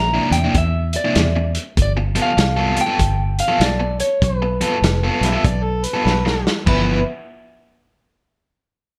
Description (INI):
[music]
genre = electric blues shuffle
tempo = 98 BPM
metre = 4/4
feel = swing 63% on 8ths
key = G mixolydian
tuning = A4 = 441 Hz
[part]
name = electric guitar through a small old amp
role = melody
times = 0.0-7.0 s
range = B4 to Bb5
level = -25 LUFS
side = equal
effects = none
[part]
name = fingered electric bass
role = bass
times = 0.0-7.0 s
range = F1 to E2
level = -22 LUFS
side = equal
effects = none
[part]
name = overdriven electric guitar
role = riff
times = 0.1-7.0 s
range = G2 to A4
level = -24 LUFS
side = equal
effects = spring reverb
[part]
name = vintage drum kit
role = drums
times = 0.3-6.8 s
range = crash cymbal, hi-hat, kick drum, snare drum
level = -24 LUFS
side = equal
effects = none
[part]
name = overdriven harmonica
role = second line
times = 5.2-7.0 s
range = G4 to E5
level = -27 LUFS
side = equal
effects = none
[sound]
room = light reverb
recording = none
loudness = -18 LUFS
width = mono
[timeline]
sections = 0.0-6.7 A section; 6.7-9.0 B section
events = drum fill 6.1-6.7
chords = 0.0 C9; 1.8 G9; 6.7 G6